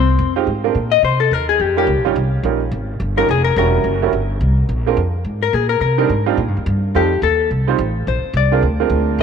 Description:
jazz, small-group swing and bop; 213 BPM; 4/4; swing 59% on 8ths; Bb mixolydian; A4 = 440 Hz
vintage hollow-body jazz guitar; melody; 0.0-9.2 s; C4 to Eb5; -19 LUFS; left 9 dB
upright bass; bass; 0.0-9.2 s; E1 to C3; -18 LUFS; equal
warm upright piano; accompaniment; 0.4-9.2 s; G3 to C5; -20 LUFS; right 12 dB
moderate plate reverb, RT60 3.4 s; 1960s-style stereo with parts hard left and right; -14 LUFS; side -7 dB against mid
0.0-9.2 A section
0.2 Fm7; 0.7 Bbsus2; 1.3 Eb9; 3.6 Edim7; 4.7 Bb7(no3); 5.8 Cm7; 6.9 F9; 8.1 Bb9

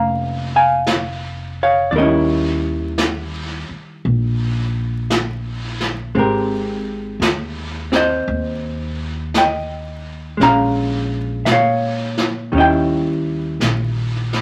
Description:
jazz ballad; 56 BPM; 4/4; swing 66% on 8ths; Ab major; A4 = 441 Hz
vintage hollow-body jazz guitar; accompaniment; 0.0-14.4 s; Eb3 to Bb5; -20 LUFS; equal
upright bass; bass; 0.0-14.4 s; F1 to Bb2; -25 LUFS; equal
jazz brush drum kit; drums; 0.9-14.4 s; brushed snare drum, hi-hat, snare drum; -26 LUFS; equal
light reverb; vinyl crackle; -19 LUFS; mono
0.0-14.4 A section
0.0 Bbm7; 1.9 Eb7b9; 6.2 Abmaj9; 10.4 Bbm7; 12.5 Eb7b9

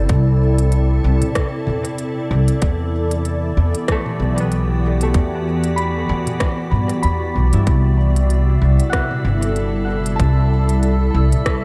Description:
ambient dub; 95 BPM; 4/4; swing 57% on 16ths; A4 = 440 Hz
soft additive organ-like pad; sustained chords; 0.0-11.6 s; C3 to D5; -24 LUFS; equal; ensemble chorus, built-in reverb
concert harp; arpeggios; 0.0-11.6 s; A3 to B5; -30 LUFS; equal; analog delay
upright bass; bass; 0.0-11.3 s; G1 to G2; -19 LUFS; equal
electronic kick drum; drums; 0.1-11.6 s; -22 LUFS; equal; overdrive
organic electronic drum kit; drums; 0.1-11.6 s; hi-hat, rim click, toms; -30 LUFS; equal; overdrive, dub echo
drifting glass-harmonics texture; texture; 8.2-11.6 s; E4 to E5; -35 LUFS; equal; chorus, built-in reverb
moderate cathedral reverb, RT60 5.3 s; dreamy mix soaked in reverb; -18 LUFS; mono
0.0-11.6 A section
0.0 C6; 2.6 Em7; 7.7 C6

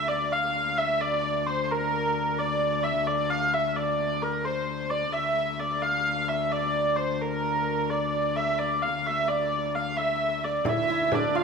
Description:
medieval dance; 87 BPM (dotted quarters); 6/8; straight; D minor; A4 = 441 Hz
dark hurdy-gurdy; melody; 0.0-11.4 s; Bb4 to F5; -25 LUFS; right 1 dB
warm viola da gamba; drone; 0.0-11.4 s; D2; -32 LUFS; left 6 dB
frame drum; percussion; 10.6-11.3 s; -30 LUFS; left 2 dB
hammered dulcimer; second line; 10.7-11.4 s; D4 to F4; -27 LUFS; right 5 dB
wet large studio reverb, RT60 1.2 s; band playing live in one room; -24 LUFS; side -5 dB against mid
0.0-10.7 A section

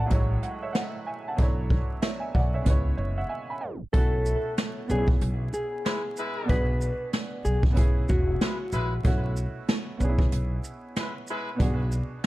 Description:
hip hop, boom-bap hip-hop; 94 BPM; 4/4; swing 60% on 16ths; B dorian; A4 = 439 Hz
clear upright piano; accompaniment; 0.0-12.3 s; A2 to B5; -33 LUFS; right 2 dB; cassette tape, high-pass filter, low-pass filter
upright bass; bass; 0.0-12.0 s; E1 to C#2; -27 LUFS; equal
jazz brush drum kit; drums; 0.1-12.3 s; hi-hat, kick drum, shaker, snare drum; -26 LUFS; equal
mellow electric guitar; melody; 3.9-9.0 s; F#4 to B4; -31 LUFS; left 1 dB; high-pass filter, low-pass filter, digital delay
warm horn section; stabs; 5.9-11.5 s; G#3 to B4; -35 LUFS; left 1 dB; high-pass filter, low-pass filter, digital delay
little or no reverb; dark, warm production, vinyl crackle, tape stop; -24 LUFS; side -17 dB against mid
0.0-3.9 A section; 3.9-12.3 B section
break 3.3-3.9; tape stop 3.6-3.9
0.1 F#m7/A; 1.4 Bm11; 2.7 C#m7; 3.9 B9sus4; 4.9 C#m7/B; 6.5 E7/B (rootless); 7.8 C#m7; 9.0 B9sus4; 10.0 C#m7/B; 11.6 Bm6

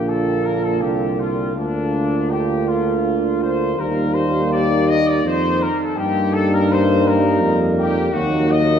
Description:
classical, hymn-like piece for brass band; 82 BPM; 3/4; rubato; A4 = 436 Hz
dark trumpet section; melody; 0.0-8.8 s; D4 to Eb5; -22 LUFS; left 4 dB
mellow French horn section; second line; 0.0-8.8 s; Eb4 to F4; -22 LUFS; right 5 dB
mellow euphonium; accompaniment; 0.0-8.8 s; D3 to G3; -25 LUFS; right 1 dB
warm euphonium; accompaniment; 0.0-8.8 s; Bb3; -24 LUFS; left 2 dB
mellow tuba; bass; 0.0-8.8 s; Bb1 to G2; -22 LUFS; equal
wet church reverb, RT60 3.0 s; -16 LUFS; side -8 dB against mid
0.0-8.8 A section
0.0 Bb; 1.5 Bb/D; 3.8 Eb; 6.0 Eb/G; 8.1 Ebm

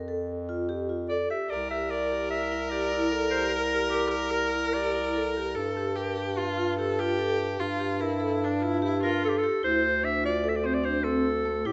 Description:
contemporary instrumental, chamber music in an uneven meter; 148 BPM; 5/4; straight; G dorian; A4 = 440 Hz
warm bass clarinet; bass; 0.0-11.7 s; C2 to A2; -34 LUFS; equal
vibraphone with medium mallets; arpeggios; 0.1-11.7 s; A3 to Bb4; -33 LUFS; equal
clear clarinet; melody; 1.1-5.4, 9.0-11.7 s; G4 to E5; -31 LUFS; equal
clear viola; second line; 1.5-9.4 s; D4 to Bb4; -33 LUFS; equal
moderate recital hall reverb, RT60 1.8 s; nothing above 8.0 kHz; -28 LUFS; mono
0.0-9.6 A section; 9.6-11.7 B section
0.0 Fadd9; 1.5 C7sus2; 5.6 G7sus2; 9.6 D7(no3)

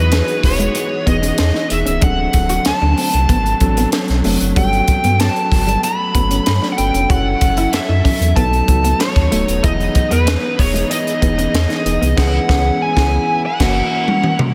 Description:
polished 1980s jazz-funk pop; 95 BPM; 4/4; straight; A4 = 440 Hz
smooth overdriven lead guitar; melody; 0.0-14.4 s; B4 to B5; -22 LUFS; equal
mellow tine electric piano; accompaniment; 0.0-14.5 s; E3 to A4; -24 LUFS; equal; lush chorus
bright studio string section; sustained chords; 0.0-14.5 s; C#3 to A#4; -31 LUFS; equal
clean electric guitar; riff; 0.0-12.1 s; G3 to F#4; -28 LUFS; equal; lush chorus
sub bass with octave; bass; 0.0-13.8 s; C#1 to G2; -20 LUFS; equal
crisp fusion drum kit; drums; 0.1-14.5 s; crash cymbal, hi-hat, kick drum, snare drum, toms; -20 LUFS; equal
moderate lush hall reverb, RT60 2.8 s; big arena sound; -15 LUFS; mono
0.0-14.5 A section
band accent 12.2-14.5; drum fill 14.1-14.5
0.0 Emaj7; 2.0 D7; 4.6 Gmaj9#11; 7.1 F#m7; 8.4 B7; 9.6 Emaj7; 12.2 C#m7; 13.4 F#7

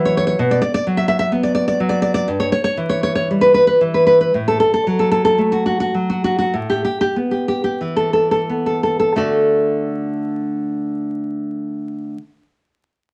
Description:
romantic piece for solo classical guitar; 42-68 BPM; 4/4; rubato; D major; A4 = 440 Hz
nylon-string guitar; solo; 0.0-12.2 s; G2 to E5; -18 LUFS; equal
moderate studio reverb, RT60 0.6 s; vinyl crackle; -18 LUFS; mono
0.0-9.2 A section; 9.2-13.1 B section
slowing down 0.0-9.2
0.4 B5; 2.3 Em/G; 4.3 F#m/A; 6.5 Asus2; 9.2 D

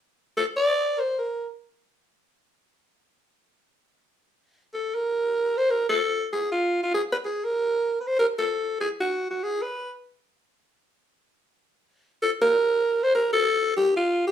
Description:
jazz; 193 BPM; 4/4; swing 62% on 8ths; Bb major; A4 = 440 Hz
growling alto saxophone; solo; 0.4-1.5, 4.7-9.9, 12.2-14.3 s; F4 to D5; -22 LUFS; equal
wet studio reverb, RT60 0.6 s; band playing live in one room; -22 LUFS; side -10 dB against mid
0.0-5.0 A section; 5.0-14.3 B section

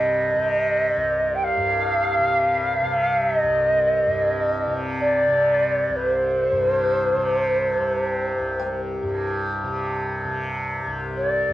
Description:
world meditative, free-time meditation music; free time; C minor; A4 = 440 Hz
mellow hollow Native American-style cedar flute; melody; 0.0-11.5 s; C5 to G5; -20 LUFS; equal; cassette tape
tanpura; drone; 0.0-11.5 s; C2 to C3; -26 LUFS; equal
buzzing kalimba; texture; 0.0-11.5 s; G5; -39 LUFS; left 7 dB
wet booth ambience, RT60 0.2 s; home recording on cassette, nothing above 10.7 kHz; -19 LUFS; side -14 dB against mid
0.0-11.5 A section

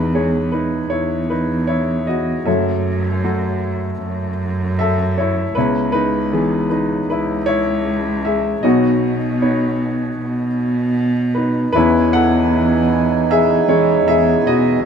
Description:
acoustic folk-pop ballad; 78 BPM; 4/4; straight; E major; A4 = 440 Hz
warm upright piano; melody; 0.0-14.9 s; F#1 to F#5; -18 LUFS; left 2 dB
warm cello; bass; 0.0-14.8 s; C#2 to E3; -19 LUFS; right 1 dB
pedal harmonium; sustained chords; 11.7-14.8 s; E3 to G#5; -25 LUFS; right 1 dB
mellow French horn; second line; 11.8-14.8 s; D#4; -20 LUFS; right 10 dB
little or no reverb; minimal, uncompressed stereo recording; -15 LUFS; side -7 dB against mid
0.0-11.8 A section; 11.8-14.9 B section
0.0 E; 2.5 F#m; 5.6 C#m7; 8.6 Badd9; 11.8 E6

